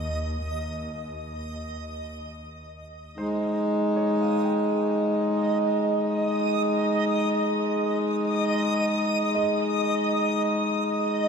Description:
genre	ambient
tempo	free time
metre	none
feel	none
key	unclear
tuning	A4 = 440 Hz
part	rich chamber double bass section	bass	0.0-3.1 s	Eb2	-35 LUFS	equal	none
part	backwards swelling texture	texture	0.0-11.3 s	Eb5 to Eb6	-30 LUFS	right 1 dB	built-in reverb, shimmer reverb
part	felt-muted upright piano	arpeggios	3.2-11.3 s	C5 to G5	-37 LUFS	right 4 dB	tape echo, shimmer reverb
part	hand-pumped harmonium	drone	3.2-11.3 s	Ab3 to Eb4	-23 LUFS	equal	none
room	wet cathedral reverb, RT60 6.6 s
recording	in a vast, echoing space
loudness	-23 LUFS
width	side -6 dB against mid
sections	0.0-3.2 A section; 3.2-11.3 B section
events	fade-out on double bass section 0.0-3.2; fade-out on synth texture 0.0-3.2; fade-in on felt piano 3.2-11.3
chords	0.0 N.C.; 3.2 Dbmaj9#11/Ab; 9.4 Ab5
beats	free time

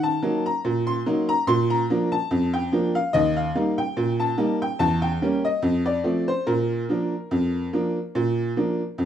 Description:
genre	ragtime piano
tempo	72 BPM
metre	2/4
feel	swing 56% on 16ths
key	Bb major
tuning	A4 = 440 Hz
part	tack piano	solo	0.0-9.1 s	Eb2 to C6	-21 LUFS	equal	none
room	light reverb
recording	band playing live in one room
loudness	-21 LUFS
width	side -10 dB against mid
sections	0.0-9.1 A section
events	none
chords	0.0 Ebm; 1.5 Bb; 3.1 Eb; 4.8 Edim7; 5.6 F; 6.5 Bb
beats	0.64 | 1.48 2.31 | 3.14 3.97 | 4.80 5.63 | 6.47 7.31 | 8.15 8.99

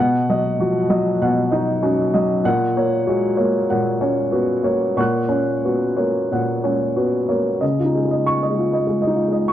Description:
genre	neoclassical minimalist piano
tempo	90-97 BPM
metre	4/4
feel	rubato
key	F# major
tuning	A4 = 439 Hz
part	dark upright piano	solo	0.0-9.5 s	A#2 to F#6	-17 LUFS	equal	none
room	light reverb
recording	worn, warbling old tape, cassette tape, warbly pitch drift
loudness	-17 LUFS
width	side -11 dB against mid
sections	0.0-7.6 A section; 7.6-9.5 B section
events	none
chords	0.0 B; 2.5 F#/A#; 7.6 C#add9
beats	0.57 1.20 1.82 | 2.45 3.08 3.70 4.33 | 4.98 5.65 6.31 6.97 | 7.62 8.26 8.88 9.51

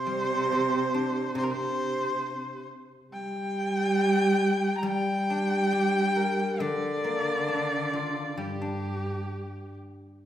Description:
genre	chinese traditional, Chinese chamber ensemble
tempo	69 BPM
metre	4/4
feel	straight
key	G yu mode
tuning	A4 = 440 Hz
part	clear erhu	melody	0.0-9.8 s	G4 to Bb5	-30 LUFS	left 1 dB	none
part	warm cello	second line	0.0-9.8 s	G2 to G3	-28 LUFS	right 2 dB	none
part	guzheng	accompaniment	0.0-10.3 s	C3 to Bb4	-34 LUFS	left 3 dB	none
room	wet recital hall reverb, RT60 1.6 s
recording	recorded in a church or concert hall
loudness	-25 LUFS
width	side -11 dB against mid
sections	0.0-10.3 A section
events	none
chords	none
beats	0.50 1.37 2.24 | 3.11 3.98 4.85 5.72 | 6.60 7.49 8.38 9.29

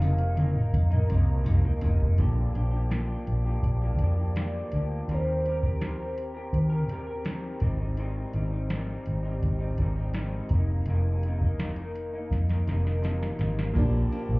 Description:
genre	indie pop, bedroom pop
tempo	83 BPM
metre	4/4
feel	straight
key	Bb mixolydian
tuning	A4 = 441 Hz
part	warm velvety synth lead	melody	0.0-7.6 s	Bb4 to F5	-35 LUFS	right 1 dB	wide subtle chorus, ping-pong delay
part	dark upright piano	accompaniment	0.0-2.2, 13.7-14.4 s	Bb3 to D5	-34 LUFS	right 2 dB	cassette tape
part	electric guitar through a small old amp	accompaniment	0.0-14.4 s	F2 to Bb4	-35 LUFS	left 1 dB	lush chorus, vibrato effect
part	vintage muted fingered electric bass	bass	0.0-14.4 s	F1 to Eb3	-26 LUFS	equal	none
part	soft vintage rhythm box	drums	0.0-14.3 s	hi-hat, kick drum, ride cymbal, snare drum, toms	-28 LUFS	equal	none
part	tambourine	percussion	0.0-2.0, 13.8-14.3 s	none	-66 LUFS	left 2 dB	none
room	digital ambience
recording	heard muffled through a wall, club reverb, EQ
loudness	-25 LUFS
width	side -24 dB against mid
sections	0.0-2.2 A section; 2.2-13.8 B section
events	drum fill 0.0-2.2, 12.3-13.8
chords	0.0 F7sus4; 2.2 Bb6; 5.1 Eb6; 7.6 Abmaj7; 10.5 F7sus4; 13.8 Bb6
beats	0.01 0.74 1.46 | 2.19 2.91 3.64 4.36 | 5.08 5.81 6.53 7.26 | 7.98 8.70 9.43 10.15 | 10.87 11.59 12.32 13.04 | 13.76

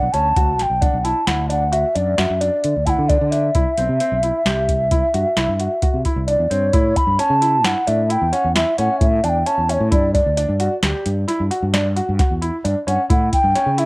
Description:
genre	progressive instrumental, band music in an uneven meter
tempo	132 BPM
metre	7/4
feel	straight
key	unclear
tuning	A4 = 440 Hz
part	mellow hollow wooden flute	melody	0.0-13.9 s	C#5 to B5	-19 LUFS	equal	cassette tape, analog delay
part	bright baby grand piano	arpeggios	0.0-13.9 s	C4 to G4	-24 LUFS	equal	cassette tape
part	fretless electric bass	bass	0.0-13.9 s	A1 to D3	-21 LUFS	equal	none
part	soft vintage rhythm box	drums	0.1-13.9 s	hi-hat, kick drum, snare drum	-20 LUFS	equal	cassette tape
room	light reverb, studio reverb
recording	home recording on cassette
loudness	-15 LUFS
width	side -25 dB against mid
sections	0.0-6.7 A section; 6.7-13.9 B section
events	none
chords	0.4 Dadd9; 3.5 C; 6.7 A; 9.9 G5; 13.1 A7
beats	| 0.36 0.82 1.27 1.73 2.18 2.64 3.09 | 3.55 4.00 4.46 4.92 5.37 5.83 6.28 | 6.74 7.19 7.64 8.10 8.55 9.01 9.46 | 9.92 10.37 10.83 11.28 11.73 12.19 12.64 | 13.10 13.55

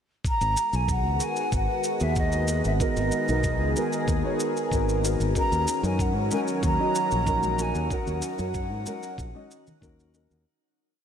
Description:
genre	sunset chillout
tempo	94 BPM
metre	4/4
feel	straight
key	G# minor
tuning	A4 = 440 Hz
part	lush unison pad	sustained chords	0.7-10.4 s	D#3 to A#4	-30 LUFS	equal	chorus, phaser, shimmer reverb
part	electronic kick drum	drums	0.2-10.0 s	none	-29 LUFS	equal	none
part	breathy mellow jazz flute	melody	0.3-9.8 s	D#5 to A#5	-29 LUFS	equal	tape echo, shimmer reverb
part	shaker	drums	0.3-10.4 s	none	-37 LUFS	equal	none
part	modern bright fingered electric bass	bass	0.4-10.4 s	G#1 to G#2	-27 LUFS	equal	none
part	dark concert grand piano	accompaniment	2.8-10.4 s	B3 to D#5	-31 LUFS	moving between left 4 dB and right 6 dB	auto-pan, tape echo, shimmer reverb
part	congas	percussion	6.3-10.4 s	none	-38 LUFS	left 3 dB	none
room	wet huge ambient reverb, RT60 7.3 s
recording	dreamy mix soaked in reverb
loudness	-23 LUFS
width	side -8 dB against mid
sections	0.3-10.5 groove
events	fade-out 7.1-10.5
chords	0.3 G#m9; 5.4 D#m7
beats	| 0.25 0.89 1.53 2.17 | 2.81 3.44 4.08 4.72 | 5.36 6.00 6.63 7.27 | 7.91 8.55 9.19 9.83

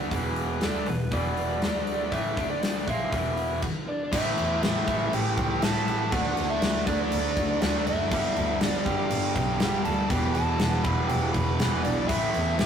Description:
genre	hard rock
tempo	121 BPM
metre	4/4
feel	straight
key	E minor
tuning	A4 = 439 Hz
part	overdriven semi-hollow guitar	riff	0.0-12.7 s	E2 to D4	-30 LUFS	right 3 dB	none
part	scooped high-gain guitar	riff	0.0-12.7 s	E2 to D4	-32 LUFS	left 4 dB	distortion
part	clear double bass	bass	0.0-12.7 s	E1 to E2	-31 LUFS	equal	none
part	huge arena drum kit	drums	0.1-12.7 s	crash cymbal, hi-hat, kick drum, snare drum	-29 LUFS	left 1 dB	none
part	biting lead guitar	melody	0.6-12.7 s	A4 to B5	-30 LUFS	equal	overdrive
part	high-gain lead guitar	second line	3.9-12.7 s	B3 to B4	-38 LUFS	right 2 dB	distortion
room	moderate studio reverb, RT60 0.6 s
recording	rough rehearsal-room recording, warm saturation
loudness	-24 LUFS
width	side -8 dB against mid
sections	0.0-4.1 A section; 4.1-12.7 B section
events	stop 3.6-4.1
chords	0.0 E5; 1.6 D5; 2.1 A5; 2.4 D5; 2.9 E5; 4.1 A5; 6.1 D; 8.1 G5; 10.1 E5; 12.1 A5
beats	| 0.12 0.62 1.13 1.63 | 2.13 2.63 3.13 3.63 | 4.13 4.63 5.13 5.63 | 6.13 6.62 7.12 7.62 | 8.12 8.61 9.11 9.61 | 10.10 10.60 11.10 11.60 | 12.09 12.59

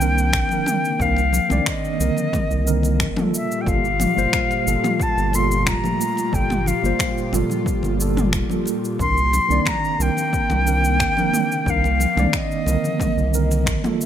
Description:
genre	sunset chillout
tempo	90 BPM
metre	4/4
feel	straight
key	C minor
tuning	A4 = 440 Hz
part	silver concert flute	melody	0.0-14.1 s	Eb5 to C6	-22 LUFS	left 2 dB	digital delay
part	mellow tine electric piano	accompaniment	0.0-14.1 s	D3 to D5	-25 LUFS	right 2 dB	fast stereo tremolo, auto-pan
part	airy breathy pad	sustained chords	0.0-14.1 s	Bb2 to G4	-28 LUFS	right 3 dB	chorus
part	round analog bass	bass	0.0-13.8 s	F1 to C2	-21 LUFS	equal	tube saturation
part	deep house drum kit	drums	0.0-14.1 s	finger snaps, shaker, toms	-26 LUFS	equal	overdrive, small room ambience
part	electronic kick drum	drums	0.3-13.8 s	none	-26 LUFS	equal	overdrive, small room ambience
part	congas	percussion	0.3-14.0 s	none	-31 LUFS	left 4 dB	none
room	light reverb, digital ambience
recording	bright 1980s-style digital production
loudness	-17 LUFS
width	side -10 dB against mid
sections	0.0-14.1 A section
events	none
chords	0.0 Cm9; 3.3 Gm9; 9.0 Cm9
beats	0.33 | 1.00 1.67 2.33 3.00 | 3.67 4.33 5.00 5.67 | 6.33 7.00 7.67 8.33 | 9.00 9.67 10.33 11.00 | 11.67 12.33 13.00 13.67

